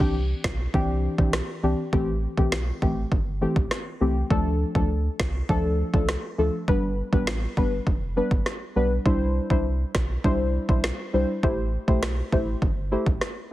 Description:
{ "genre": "dancehall", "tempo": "101 BPM", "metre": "4/4", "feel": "straight", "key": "unclear", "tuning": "A4 = 437 Hz", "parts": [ { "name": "deep mellow chord stab", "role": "accompaniment", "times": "0.0-13.1 s", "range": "E3 to C5", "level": "-26 LUFS", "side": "left 1 dB", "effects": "chorus" }, { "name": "warm sub bass", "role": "bass", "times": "0.0-13.2 s", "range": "F1 to D2", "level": "-27 LUFS", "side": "equal", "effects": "none" }, { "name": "deep house drum kit", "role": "drums", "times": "0.0-13.4 s", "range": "kick drum, rim click, snare drum", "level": "-25 LUFS", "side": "equal", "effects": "vintage 12-bit sampler grit" } ], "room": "little or no reverb", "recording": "heavily compressed radio sound, multiband compression", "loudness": "-22 LUFS", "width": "side -16 dB against mid", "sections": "0.0-13.5 A section", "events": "none", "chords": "0.0 Cadd9; 1.9 Am7; 4.3 Dm; 6.7 G; 9.1 Cadd9; 11.4 Am7" }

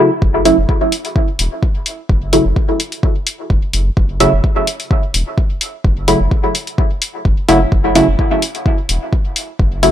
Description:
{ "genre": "dub techno", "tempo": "128 BPM", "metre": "4/4", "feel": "swing 53% on 16ths", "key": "F# minor", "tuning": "A4 = 439 Hz", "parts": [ { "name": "filtered dub chord stab", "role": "stabs", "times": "0.0-9.9 s", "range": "C#3 to E4", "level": "-14 LUFS", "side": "equal", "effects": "chorus, phaser, sidechain pumping, dub echo" }, { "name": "round analog bass", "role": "bass", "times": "0.2-9.9 s", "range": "E1 to F#1", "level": "-17 LUFS", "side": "equal", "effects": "transformer saturation, sidechain pumping" }, { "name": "electronic kick drum", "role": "drums", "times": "0.2-9.7 s", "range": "none", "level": "-15 LUFS", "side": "equal", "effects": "overdrive" }, { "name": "electronic hi-hat", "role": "drums", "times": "0.5-9.9 s", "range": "none", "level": "-18 LUFS", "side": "left 2 dB", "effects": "overdrive" } ], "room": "light reverb", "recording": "dry, gritty hardware recording", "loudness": "-13 LUFS", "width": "side -11 dB against mid", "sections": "0.2-9.9 A section", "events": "break 0.0; filter sweep on synth stab 0.2-9.9", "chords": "0.2 F#7(no3)" }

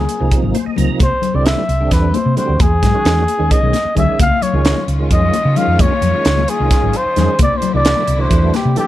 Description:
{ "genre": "electric jazz fusion", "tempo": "263 BPM (eighths)", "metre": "7/8", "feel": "straight", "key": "unclear", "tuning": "A4 = 440 Hz", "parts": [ { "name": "breathy trumpet", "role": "melody", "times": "0.0-8.9 s", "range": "G4 to F5", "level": "-18 LUFS", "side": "left 1 dB", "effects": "none" }, { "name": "tonewheel organ", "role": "accompaniment", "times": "0.0-8.9 s", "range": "C3 to Bb5", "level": "-22 LUFS", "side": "right 5 dB", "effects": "slow rotary speaker, chorus vibrato" }, { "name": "hollow-body short-scale fingered electric bass", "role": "bass", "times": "0.0-8.8 s", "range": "Ab1 to Db3", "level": "-16 LUFS", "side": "equal", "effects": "none" }, { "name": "crisp fusion drum kit", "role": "drums", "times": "0.1-8.9 s", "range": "hi-hat, kick drum, snare drum", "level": "-17 LUFS", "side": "right 1 dB", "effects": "none" }, { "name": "congas", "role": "percussion", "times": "0.4-8.9 s", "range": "none", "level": "-22 LUFS", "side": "left 11 dB", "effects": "none" }, { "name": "clear studio string section", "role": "sustained chords", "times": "4.2-8.9 s", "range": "B2 to F4", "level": "-28 LUFS", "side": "left 1 dB", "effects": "none" } ], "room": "little or no reverb", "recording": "dark, warm production", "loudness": "-12 LUFS", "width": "side -14 dB against mid", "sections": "0.0-8.9 A section", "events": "tonewheel organ fill 0.3-1.0", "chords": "0.0 Dbmaj9; 1.0 Cadd9; 2.6 Emaj9; 4.2 Dbadd9; 7.4 Cmaj9" }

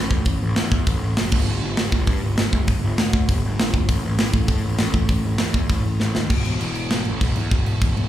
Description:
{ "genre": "punk rock", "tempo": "198 BPM", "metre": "4/4", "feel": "straight", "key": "unclear", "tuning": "A4 = 438 Hz", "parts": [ { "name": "fuzz picked electric bass", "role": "bass", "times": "0.0-8.1 s", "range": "E1 to A2", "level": "-23 LUFS", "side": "equal", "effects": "overdrive" }, { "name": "tight metal drum kit", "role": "drums", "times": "0.1-8.0 s", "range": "crash cymbal, hi-hat, kick drum, snare drum", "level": "-20 LUFS", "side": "equal", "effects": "none" } ], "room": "little or no reverb", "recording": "live gig heard through the venue's PA, club reverb", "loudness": "-18 LUFS", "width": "side -12 dB against mid", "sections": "0.0-6.3 A section; 6.3-8.1 B section", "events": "drum fill 6.0-6.3; half time 6.3-8.1", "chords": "none" }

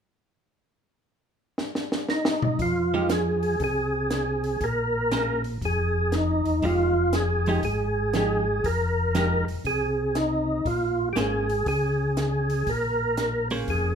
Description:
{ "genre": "soul jazz organ trio", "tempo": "119 BPM", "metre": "4/4", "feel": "swing 66% on 8ths", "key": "F minor", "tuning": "A4 = 441 Hz", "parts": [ { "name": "compact cocktail drum kit", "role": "drums", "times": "1.6-13.8 s", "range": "hi-hat, kick drum, snare drum, toms", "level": "-30 LUFS", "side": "equal", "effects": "none" }, { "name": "percussive tonewheel organ", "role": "melody", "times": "2.1-13.9 s", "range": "Eb4 to Bb4", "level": "-25 LUFS", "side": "right 1 dB", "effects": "slow rotary speaker, overdrive, chorus vibrato" }, { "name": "tonewheel organ", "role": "bass", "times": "2.6-13.9 s", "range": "E1 to F2", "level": "-27 LUFS", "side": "left 1 dB", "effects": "stopped rotary speaker" }, { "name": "archtop guitar, miked and amplified", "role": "accompaniment", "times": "2.9-13.9 s", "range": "F3 to C5", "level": "-29 LUFS", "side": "right 2 dB", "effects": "none" } ], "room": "light reverb", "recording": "minimal, uncompressed stereo recording", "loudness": "-22 LUFS", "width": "side -7 dB against mid", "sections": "0.6-2.6 A section; 2.6-13.9 B section", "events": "drum fill 1.6-2.6", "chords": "0.6 N.C.; 2.6 Fm; 4.6 Bbm9; 6.6 Fm9; 10.7 Bbm9" }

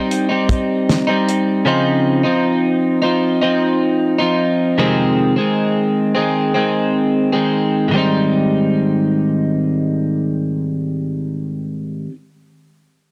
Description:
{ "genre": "indie pop, bedroom pop", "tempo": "77 BPM", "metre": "4/4", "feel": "straight", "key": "Ab major", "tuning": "A4 = 440 Hz", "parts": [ { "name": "twelve-string electric guitar", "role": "accompaniment", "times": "0.0-12.2 s", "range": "F2 to Eb4", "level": "-17 LUFS", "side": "equal", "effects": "subtle chorus, warbly pitch drift" }, { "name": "damped 70s drum kit", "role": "drums", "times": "0.1-1.5 s", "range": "hi-hat, kick drum, snare drum", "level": "-20 LUFS", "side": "equal", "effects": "none" } ], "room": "moderate studio reverb, RT60 0.6 s", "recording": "dry, gritty hardware recording", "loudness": "-17 LUFS", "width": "mono", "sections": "0.0-7.9 A section; 7.9-11.0 B section", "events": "none", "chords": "0.0 Abmaj7 (rootless); 1.7 Dbmaj9; 4.8 Fm7; 7.9 Abmaj7" }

